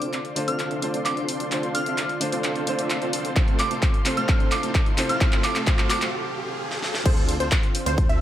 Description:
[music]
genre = EDM, festival progressive house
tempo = 130 BPM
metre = 4/4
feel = straight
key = D minor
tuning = A4 = 441 Hz
[part]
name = clear grand piano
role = accompaniment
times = 0.0-7.1 s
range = C3 to C5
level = -29 LUFS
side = equal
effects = sidechain pumping
[part]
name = lush unison pad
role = sustained chords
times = 0.0-8.2 s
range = D3 to C6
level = -34 LUFS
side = equal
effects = chorus, sidechain pumping
[part]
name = dense compressed supersaw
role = riff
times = 0.0-8.2 s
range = A3 to E5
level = -31 LUFS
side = equal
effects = sidechain pumping, low-pass filter
[part]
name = detuned saw bass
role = bass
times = 0.0-8.2 s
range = C2 to D2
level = -35 LUFS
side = equal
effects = none
[part]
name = big-room dance drum kit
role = drums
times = 0.0-8.2 s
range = crash cymbal, handclaps, hi-hat, snare drum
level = -28 LUFS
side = equal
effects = high-pass filter on hats, high-pass filter on snare, high-pass filter on cymbals
[part]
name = riser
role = sound effects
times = 1.8-7.1 s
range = none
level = -35 LUFS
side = right 1 dB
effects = none
[part]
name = soft synth bell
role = melody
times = 0.5-6.0 s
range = D6 to F6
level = -30 LUFS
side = right 1 dB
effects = chorus, dub echo
[part]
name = electronic kick drum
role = drums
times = 3.4-8.1 s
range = none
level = -21 LUFS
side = equal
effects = none
[part]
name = wide unison pluck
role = arpeggios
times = 7.1-8.2 s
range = C5 to E5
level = -28 LUFS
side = equal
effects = sidechain pumping, dub echo
[sound]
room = light reverb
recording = none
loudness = -21 LUFS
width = side -12 dB against mid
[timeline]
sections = 0.0-7.1 A section; 7.1-8.2 B section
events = build-up 0.0-7.1; drum fill 0.0-6.1, 6.7-7.1; filter sweep on supersaw synth 0.0-7.1; riser 1.8-7.1; break 6.1-7.1; drop 7.1-8.2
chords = 0.0 Dm7; 3.4 F/C; 7.1 Dm7

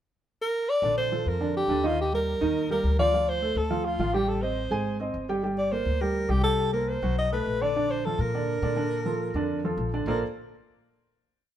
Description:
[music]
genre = Afro-Cuban jazz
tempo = 208 BPM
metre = 4/4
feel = straight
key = Bb major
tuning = A4 = 439 Hz
[part]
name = breathy alto saxophone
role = melody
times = 0.4-10.2 s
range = F4 to Eb5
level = -27 LUFS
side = equal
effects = none
[part]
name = warm baby grand piano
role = accompaniment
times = 0.8-10.2 s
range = D3 to Ab5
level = -28 LUFS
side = right 2 dB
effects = none
[part]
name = upright bass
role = bass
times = 0.8-10.2 s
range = G1 to Bb2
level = -30 LUFS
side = left 1 dB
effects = none
[sound]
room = moderate stone room reverb, RT60 1.3 s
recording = band playing live in one room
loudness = -24 LUFS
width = side -11 dB against mid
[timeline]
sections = 0.0-0.8 pickup bar; 0.8-10.1 A section; 10.1-11.2 final chord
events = none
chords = 0.0 N.C.; 0.8 Bbmaj9; 2.0 Ebadd9; 3.1 Dm7; 4.3 Am7b5; 4.9 Ab; 5.4 Gmadd11; 6.6 C5; 7.2 B5; 7.7 Bbmaj7; 10.1 Bbmaj9

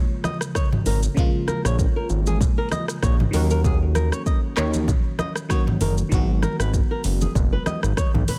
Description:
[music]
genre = afrobeats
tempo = 97 BPM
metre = 4/4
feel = swing 55% on 16ths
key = Eb minor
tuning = A4 = 440 Hz
[part]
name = barking FM electric piano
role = accompaniment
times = 0.0-8.4 s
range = Db3 to Gb4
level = -31 LUFS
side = equal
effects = phaser
[part]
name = flamenco guitar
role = riff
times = 0.2-8.4 s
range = Ab4 to Eb5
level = -32 LUFS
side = equal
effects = delay
[part]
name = afro-pop drum kit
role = drums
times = 0.2-8.4 s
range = handclaps, hi-hat, kick drum, rim click, shaker, toms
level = -25 LUFS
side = equal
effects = none
[part]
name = congas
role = percussion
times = 0.2-8.4 s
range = none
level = -32 LUFS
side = equal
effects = none
[part]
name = fat analog bass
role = bass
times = 0.9-8.2 s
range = Gb1 to Eb2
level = -24 LUFS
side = equal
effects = none
[sound]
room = digital ambience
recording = none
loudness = -22 LUFS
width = mono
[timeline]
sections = 0.0-8.4 A section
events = none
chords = 0.0 Bbm7; 3.3 Ebm7; 6.1 Abm7

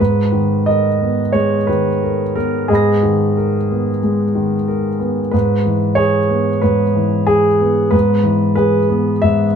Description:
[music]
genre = neoclassical minimalist piano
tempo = 91 BPM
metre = 4/4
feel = rubato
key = G# minor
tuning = A4 = 436 Hz
[part]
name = clear grand piano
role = solo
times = 0.0-9.6 s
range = G#2 to A#6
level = -13 LUFS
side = equal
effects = none
[sound]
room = moderate stone room reverb, RT60 0.9 s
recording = band playing live in one room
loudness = -13 LUFS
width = side -7 dB against mid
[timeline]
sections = 0.0-9.6 A section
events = none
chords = 0.0 G#madd9; 5.3 E/G#

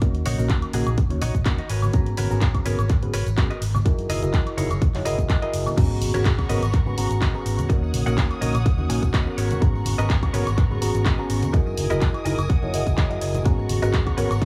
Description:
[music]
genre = filtered disco house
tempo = 125 BPM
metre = 4/4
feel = swing 54% on 16ths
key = G# minor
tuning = A4 = 440 Hz
[part]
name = reed electric piano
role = accompaniment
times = 0.0-14.3 s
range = A#3 to A#5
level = -30 LUFS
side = equal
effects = overdrive, phaser, sidechain pumping, low-pass filter
[part]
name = fingered electric bass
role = bass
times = 0.0-14.4 s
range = F#1 to G#2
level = -27 LUFS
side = equal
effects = sidechain pumping, low-pass filter
[part]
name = electronic kick drum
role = drums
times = 0.0-14.4 s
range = none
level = -24 LUFS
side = equal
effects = none
[part]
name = punchy analog drum machine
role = drums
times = 0.0-14.4 s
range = crash cymbal, handclaps, hi-hat, shaker, woodblock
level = -34 LUFS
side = equal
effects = sidechain pumping on perc, sidechain pumping on hats, sidechain pumping on cymbals
[part]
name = tambourine and congas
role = percussion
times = 0.0-14.4 s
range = none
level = -35 LUFS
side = equal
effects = none
[part]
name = direct-recorded clean electric guitar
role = riff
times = 0.3-14.4 s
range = D#4 to G#5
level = -34 LUFS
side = equal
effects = sidechain pumping, low-pass filter
[part]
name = muted chamber violin section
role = sustained chords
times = 5.8-14.4 s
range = B3 to D#6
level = -37 LUFS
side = equal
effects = sidechain pumping, low-pass filter
[part]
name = impact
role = sound effects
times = 5.8-7.7 s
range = none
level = -33 LUFS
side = equal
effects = none
[sound]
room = light reverb, digital ambience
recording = none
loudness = -22 LUFS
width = mono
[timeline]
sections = 0.0-5.8 A section; 5.8-14.4 B section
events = clean electric guitar fill 1.0-1.9, 8.7-9.6, 12.0-13.5; drop 5.8-14.4; impact 5.8-7.7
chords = 0.0 D#m7; 1.7 G#m11; 3.9 F#13; 5.8 G#m11; 7.7 D#m7; 9.4 G#m11; 11.5 F#13; 13.5 G#m11

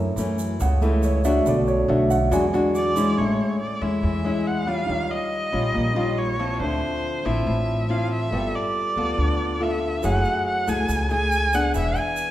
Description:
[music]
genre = bossa nova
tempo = 140 BPM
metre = 4/4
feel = straight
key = A major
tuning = A4 = 440 Hz
[part]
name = nylon-string guitar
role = accompaniment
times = 0.0-12.3 s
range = F#2 to A4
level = -24 LUFS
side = left 2 dB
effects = none
[part]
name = warm grand piano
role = accompaniment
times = 0.0-12.3 s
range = D3 to G#5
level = -28 LUFS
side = right 2 dB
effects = none
[part]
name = upright bass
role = bass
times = 0.0-11.9 s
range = E1 to F#2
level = -25 LUFS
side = equal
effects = none
[part]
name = egg shaker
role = percussion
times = 0.2-3.2, 10.0-12.3 s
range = none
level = -41 LUFS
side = right 7 dB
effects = none
[part]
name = clear erhu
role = melody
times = 2.8-12.3 s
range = C5 to G#5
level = -25 LUFS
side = right 1 dB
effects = none
[sound]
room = wet recital hall reverb, RT60 1.6 s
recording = recorded in a church or concert hall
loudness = -20 LUFS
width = side -13 dB against mid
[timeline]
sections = 0.0-3.2 A section; 3.2-12.3 B section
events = grand piano solo 0.0-3.2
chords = 0.0 F#m7; 1.5 Bm7; 2.3 E9; 3.2 Amaj7; 4.9 D#9; 6.6 Dm9; 8.3 G9; 10.0 F#m9; 11.7 E7

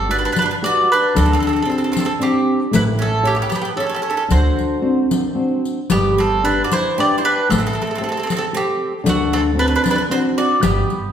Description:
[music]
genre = italian folk, Italian serenade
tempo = 114 BPM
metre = 3/4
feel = rubato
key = unclear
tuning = A4 = 440 Hz
[part]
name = mandolin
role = melody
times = 0.0-11.1 s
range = F#4 to D5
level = -19 LUFS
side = right 2 dB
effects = none
[part]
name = bowl-back mandolin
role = second line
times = 0.0-11.1 s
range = A3 to G4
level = -26 LUFS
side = right 3 dB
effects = none
[part]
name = flamenco guitar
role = accompaniment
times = 0.0-11.1 s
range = D3 to C#5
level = -20 LUFS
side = left 1 dB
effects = none
[part]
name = upright bass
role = bass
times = 0.0-10.8 s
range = G1 to D2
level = -21 LUFS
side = right 1 dB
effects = none
[part]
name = riq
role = percussion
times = 0.4-11.0 s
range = none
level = -23 LUFS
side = left 3 dB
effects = none
[sound]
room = wet recital hall reverb, RT60 1.4 s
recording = recorded in a church or concert hall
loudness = -15 LUFS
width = side -9 dB against mid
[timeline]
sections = 0.0-11.1 A section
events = none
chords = 0.0 Gmaj7; 1.2 D7sus4; 2.7 A7; 4.3 D7; 5.9 G; 7.5 Am7; 9.1 D7

